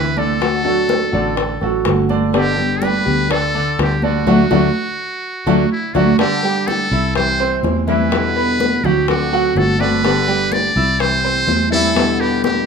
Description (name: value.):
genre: latin, Cuban son and guajira.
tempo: 125 BPM.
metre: 4/4.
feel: straight.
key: G major.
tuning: A4 = 440 Hz.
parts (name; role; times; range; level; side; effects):
trumpet with metal mute; melody; 0.0-12.7 s; E4 to D5; -20 LUFS; right 1 dB; none.
nylon-string guitar; accompaniment; 0.0-12.7 s; B2 to G4; -21 LUFS; left 5 dB; none.
bright baby grand piano; arpeggios; 0.0-12.6 s; D3 to E6; -20 LUFS; right 4 dB; none.
fingered electric bass; bass; 0.0-12.6 s; G1 to E2; -22 LUFS; equal; none.
congas; percussion; 0.2-12.7 s; none; -23 LUFS; right 2 dB; none.
bongos; percussion; 0.4-12.7 s; none; -24 LUFS; left 8 dB; none.
room: moderate large studio reverb, RT60 1.2 s.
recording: minimal, uncompressed stereo recording.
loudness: -14 LUFS.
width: side -6 dB against mid.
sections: 0.0-6.2 A section; 6.2-12.7 B section.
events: band accent 4.3-6.2; drum fill 5.5-6.2.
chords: 0.4 D; 2.3 G; 4.3 D; 6.2 Gadd9; 7.2 C; 8.1 Em7; 9.1 D7; 10.0 G; 11.0 C; 12.0 Em7.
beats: | 0.41 0.90 1.38 1.86 | 2.34 2.82 3.31 3.79 | 4.27 4.75 5.23 5.71 | 6.19 6.67 7.15 7.63 | 8.12 8.60 9.08 9.56 | 10.04 10.52 11.00 11.48 | 11.96 12.44.